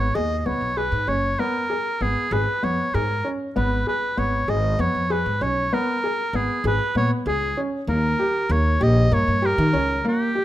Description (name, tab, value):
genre	contemporary instrumental, chamber music in an uneven meter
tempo	194 BPM (eighths)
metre	7/8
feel	straight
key	G# minor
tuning	A4 = 440 Hz
part	clear oboe	melody	0.0-10.4 s	G4 to D#5	-24 LUFS	equal	none
part	felt-muted upright piano	arpeggios	0.0-10.4 s	A#3 to G#4	-25 LUFS	equal	none
part	upright bass	bass	0.0-10.0 s	F#1 to D#3	-23 LUFS	equal	none
room	light reverb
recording	close, detailed microphones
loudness	-20 LUFS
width	side -14 dB against mid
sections	0.0-10.4 A section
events	none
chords	0.0 G#m; 3.6 C#7(no3)/G#; 7.9 D#7